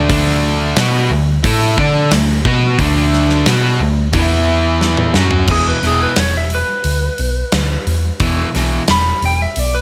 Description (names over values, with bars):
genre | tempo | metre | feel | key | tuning
hard rock | 89 BPM | 4/4 | straight | unclear | A4 = 440 Hz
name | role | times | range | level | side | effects
distorted electric guitar | riff | 0.0-8.8 s | E2 to D5 | -23 LUFS | equal | distortion
distorted electric guitar | riff | 0.0-5.5 s | D3 to D5 | -21 LUFS | equal | distortion
overdriven semi-hollow guitar | riff | 0.0-8.8 s | E2 to D5 | -21 LUFS | equal | none
hollow-body short-scale picked electric bass | bass | 0.0-9.8 s | E1 to D3 | -19 LUFS | equal | none
big rock drum kit | drums | 0.1-9.7 s | crash cymbal, hi-hat, kick drum, snare drum, toms | -21 LUFS | equal | none
lightly driven lead guitar | melody | 5.5-9.8 s | G#4 to B5 | -21 LUFS | equal | slapback echo
room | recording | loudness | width
light reverb, small room reverb | none | -14 LUFS | mono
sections
0.0-5.5 A section; 5.5-9.8 B section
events
drum fill 4.8-5.5; lead electric guitar solo 5.5-9.8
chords
0.1 D5; 4.1 E5; 5.2 F#5; 5.5 E5